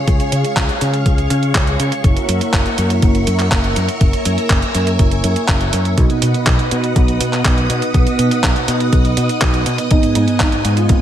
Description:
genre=italo disco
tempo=122 BPM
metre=4/4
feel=straight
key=unclear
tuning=A4 = 439 Hz
part: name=string machine, full ensemble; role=sustained chords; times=0.0-11.0 s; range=B3 to D#6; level=-21 LUFS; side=equal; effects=ensemble chorus
part: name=mellow synth brass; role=stabs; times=0.0-11.0 s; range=G#2 to D#5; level=-21 LUFS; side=right 3 dB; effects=chorus, digital delay
part: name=fingered electric bass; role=bass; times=0.1-11.0 s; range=F#1 to C#3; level=-18 LUFS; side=equal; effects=none
part: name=clean 12-bit digital drum machine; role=drums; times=0.1-11.0 s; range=handclaps, hi-hat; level=-20 LUFS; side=right 1 dB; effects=gated reverb
part: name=electronic kick drum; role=drums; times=0.1-11.0 s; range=none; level=-15 LUFS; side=equal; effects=none
part: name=dark concert grand piano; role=melody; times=9.9-11.0 s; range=D#4 to E#4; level=-21 LUFS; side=left 1 dB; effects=digital delay
room=light reverb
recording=none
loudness=-13 LUFS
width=side -10 dB against mid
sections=0.0-11.0 A section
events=filter sweep on analog polysynth 0.0-11.0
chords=0.0 C#; 2.0 F#7; 6.0 B; 9.9 G#m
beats=| 0.07 0.57 1.06 1.55 | 2.04 2.53 3.03 3.52 | 4.01 4.50 4.99 5.49 | 5.98 6.47 6.96 7.45 | 7.94 8.44 8.93 9.42 | 9.91 10.40 10.89

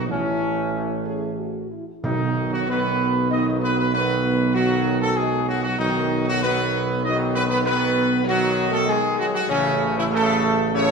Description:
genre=classical, ceremonial fanfare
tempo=97 BPM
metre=3/4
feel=straight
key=B mixolydian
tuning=A4 = 444 Hz
part: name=mellow French horn section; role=sustained chords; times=0.0-10.9 s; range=C#3 to G#4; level=-26 LUFS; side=left 1 dB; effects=none
part: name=mellow trombone section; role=sustained chords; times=0.0-10.9 s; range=C#3 to A3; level=-28 LUFS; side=right 2 dB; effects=none
part: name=mellow tuba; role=bass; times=0.0-10.9 s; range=A1 to B1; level=-25 LUFS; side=right 3 dB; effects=none
part: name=mellow trumpet section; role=melody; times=0.1-10.9 s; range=C#4 to D#5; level=-23 LUFS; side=equal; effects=none
part: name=timpani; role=percussion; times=2.0-3.0 s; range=B2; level=-29 LUFS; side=right 4 dB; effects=none
room=wet scoring stage reverb, RT60 1.6 s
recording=minimal, uncompressed stereo recording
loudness=-19 LUFS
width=side -5 dB against mid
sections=0.0-2.0 A section; 2.0-10.9 B section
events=none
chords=0.1 A; 2.0 B; 9.5 A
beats=| 0.11 0.76 1.40 | 2.05 2.69 3.32 | 3.94 4.56 5.18 | 5.80 6.43 7.05 | 7.66 8.27 8.88 | 9.49 10.12 10.73

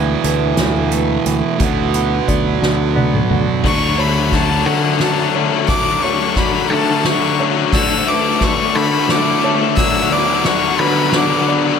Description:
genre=post-rock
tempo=59 BPM (dotted quarters)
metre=6/8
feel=straight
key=D major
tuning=A4 = 440 Hz
part: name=glassy FM pad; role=sustained chords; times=0.0-11.8 s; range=F#3 to F#5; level=-27 LUFS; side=left 2 dB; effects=none
part: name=felt-muted upright piano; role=arpeggios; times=0.0-11.8 s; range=A4 to D5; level=-28 LUFS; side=right 4 dB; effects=digital delay
part: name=twangy electric guitar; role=arpeggios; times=0.0-11.8 s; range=D3 to B3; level=-24 LUFS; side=left 3 dB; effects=wide subtle chorus, digital delay
part: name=thick fuzz guitar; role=riff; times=0.0-3.6 s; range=E2 to B3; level=-19 LUFS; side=right 11 dB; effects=distortion
part: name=fingered electric bass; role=bass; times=0.0-11.8 s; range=D2 to D3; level=-21 LUFS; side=equal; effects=none
part: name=soft-mallet drum kit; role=drums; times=0.2-11.6 s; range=crash cymbal, hi-hat, kick drum, ride cymbal, snare drum, toms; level=-20 LUFS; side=left 1 dB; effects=none
part: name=biting overdriven guitar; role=riff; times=3.6-11.8 s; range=D3 to A3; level=-18 LUFS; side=left 13 dB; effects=none
part: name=clear violin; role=melody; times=3.7-11.5 s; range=F#5 to E6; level=-20 LUFS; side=equal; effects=digital delay
room=light reverb, studio reverb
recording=none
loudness=-13 LUFS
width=side -7 dB against mid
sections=0.0-3.7 A section; 3.7-11.8 B section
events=drum fill 2.6-3.7, 3.7-11.8; build-up 3.7-11.8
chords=0.0 Esus4/D; 1.6 Bm/D; 3.7 Dmaj7; 7.7 Esus4/D; 9.8 Bm/D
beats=0.58 | 1.61 2.63 | 3.65 4.67 | 5.69 6.71 | 7.74 8.76 | 9.78 10.80

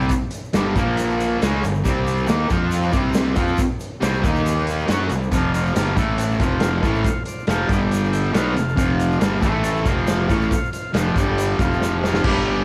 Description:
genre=garage rock duo or trio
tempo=139 BPM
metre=4/4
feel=straight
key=unclear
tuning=A4 = 440 Hz
part: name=fuzz guitar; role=riff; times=0.0-12.6 s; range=F2 to F#4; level=-23 LUFS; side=equal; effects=distortion, cassette tape
part: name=fuzz fingered electric bass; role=bass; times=0.0-12.6 s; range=F1 to F#2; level=-27 LUFS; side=equal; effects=overdrive
part: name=egg shaker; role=percussion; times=0.0-12.2 s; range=none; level=-44 LUFS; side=equal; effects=none
part: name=raw garage drum kit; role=drums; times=0.1-12.3 s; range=crash cymbal, hi-hat, kick drum, snare drum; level=-25 LUFS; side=equal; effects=cassette tape
part: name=combo organ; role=sustained chords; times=5.3-12.6 s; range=E4 to A5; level=-32 LUFS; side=equal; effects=cassette tape
room=light reverb, studio reverb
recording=home recording on cassette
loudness=-20 LUFS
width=mono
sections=0.0-12.2 A section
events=transistor combo organ fill 7.9-8.8; drum fill 11.8-12.2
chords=0.0 G5; 0.8 Bb5; 1.4 G5; 1.9 C5; 2.5 F5; 2.9 C5; 4.2 Eb5; 4.9 C5; 5.3 F5; 6.0 A5; 6.4 F5; 7.7 G5; 8.3 F5; 9.4 A5; 9.9 F5; 11.2 G5; 11.6 F5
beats=| 0.11 0.55 0.98 1.42 | 1.86 2.29 2.73 3.16 | 3.59 4.03 4.46 4.89 | 5.32 5.75 6.19 6.62 | 7.05 7.48 7.92 8.35 | 8.78 9.21 9.65 10.08 | 10.51 10.95 11.38 11.81 | 12.24

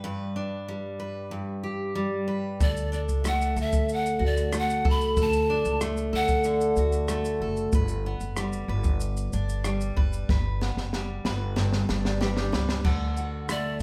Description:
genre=acoustic pop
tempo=94 BPM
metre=4/4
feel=straight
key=D major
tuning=A4 = 440 Hz
part: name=picked steel-string acoustic guitar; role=accompaniment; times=0.0-13.8 s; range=G2 to B4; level=-31 LUFS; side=equal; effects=none
part: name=breathy bright pan flute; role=melody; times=2.6-6.7, 13.5-13.8 s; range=D5 to B5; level=-31 LUFS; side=equal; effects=none
part: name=upright bass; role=bass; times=2.6-13.8 s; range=F#1 to D2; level=-32 LUFS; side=equal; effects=none
part: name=compact cocktail drum kit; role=drums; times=2.6-13.8 s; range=crash cymbal, kick drum, rim click, shaker, snare drum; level=-30 LUFS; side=equal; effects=none
part: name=vibraphone with medium hard mallets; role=second line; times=12.1-12.8 s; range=D4 to D5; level=-37 LUFS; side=equal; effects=none
room=moderate large studio reverb, RT60 0.9 s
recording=band playing live in one room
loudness=-27 LUFS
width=mono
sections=0.0-12.8 A section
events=drum fill 10.3-12.8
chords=0.0 G; 2.6 D; 7.7 G; 12.8 D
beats=| 0.04 0.68 1.32 1.96 | 2.60 3.25 3.89 4.53 | 5.17 5.81 6.45 7.09 | 7.73 8.37 9.01 9.65 | 10.29 10.93 11.57 12.20 | 12.84 13.48

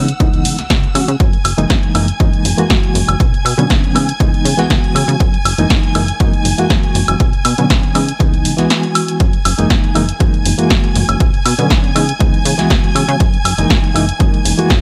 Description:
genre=filtered disco house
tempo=120 BPM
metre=4/4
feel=straight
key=F# mixolydian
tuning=A4 = 440 Hz
part: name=reed electric piano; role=accompaniment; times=0.0-14.8 s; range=D3 to F#4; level=-19 LUFS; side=equal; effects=overdrive, fast tremolo, phaser, sidechain pumping
part: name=warm studio string section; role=sustained chords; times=0.0-14.8 s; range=F#5 to G#6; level=-26 LUFS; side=equal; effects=vintage 12-bit sampler grit, sidechain pumping
part: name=plucky analog bass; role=bass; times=0.0-14.8 s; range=F#1 to C#3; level=-20 LUFS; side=equal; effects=sidechain pumping
part: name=punchy analog drum machine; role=drums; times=0.1-14.8 s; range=hi-hat, snare drum, woodblock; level=-20 LUFS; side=equal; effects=sidechain pumping on hats, sidechain pumping on cymbals, sidechain pumping on perc
part: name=electronic kick drum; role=drums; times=0.2-14.8 s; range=none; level=-16 LUFS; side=equal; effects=none
room=digital ambience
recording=none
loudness=-13 LUFS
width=mono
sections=0.0-14.8 A section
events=none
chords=0.0 C#m9; 1.2 F#13; 3.2 Bmadd9; 4.0 C#m9; 5.2 F#13; 7.2 Bmadd9; 8.0 C#m9; 9.2 F#13; 11.2 Bmadd9; 12.0 C#m9; 13.2 F#13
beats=0.20 0.70 | 1.20 1.70 2.20 2.70 | 3.20 3.70 4.20 4.70 | 5.20 5.70 6.20 6.70 | 7.20 7.70 8.20 8.70 | 9.20 9.70 10.20 10.70 | 11.20 11.70 12.20 12.70 | 13.20 13.70 14.20 14.70

